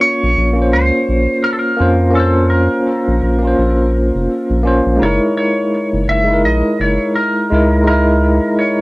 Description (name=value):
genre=trip hop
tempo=84 BPM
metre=4/4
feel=swing 59% on 16ths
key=unclear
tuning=A4 = 445 Hz
part: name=clean lap steel guitar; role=melody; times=0.0-8.8 s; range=A4 to Fb5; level=-18 LUFS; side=equal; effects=vintage 12-bit sampler grit, cassette tape, tape echo
part: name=bright tine electric piano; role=accompaniment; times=0.0-8.8 s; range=Ab3 to Db5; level=-14 LUFS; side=equal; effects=tremolo, cassette tape, tape echo
part: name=round analog bass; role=bass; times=0.2-8.4 s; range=F1 to F2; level=-15 LUFS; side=equal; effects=none
room=light reverb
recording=home recording on cassette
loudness=-12 LUFS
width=side -21 dB against mid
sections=0.0-8.8 A section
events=none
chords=0.0 Bbmadd9; 5.0 Gb13